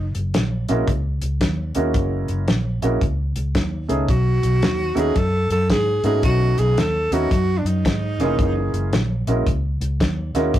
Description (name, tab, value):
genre	electric blues shuffle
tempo	112 BPM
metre	4/4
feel	swing 64% on 8ths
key	F# mixolydian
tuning	A4 = 443 Hz
part	breathy tenor saxophone	melody	0.0-0.1, 4.1-8.7 s	D4 to A4	-22 LUFS	right 1 dB	none
part	vintage muted fingered electric bass	bass	0.0-10.6 s	E#1 to G#2	-21 LUFS	equal	none
part	warm soul drum kit	drums	0.1-10.6 s	hi-hat, kick drum, snare drum	-22 LUFS	equal	none
part	warm upright piano	accompaniment	0.7-10.6 s	E3 to G#4	-22 LUFS	right 2 dB	none
room	moderate small room reverb, RT60 0.5 s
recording	rough rehearsal-room recording, warm saturation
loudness	-18 LUFS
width	side -12 dB against mid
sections	0.0-10.6 A section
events	none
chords	0.0 F#9; 4.1 B9; 8.4 F#9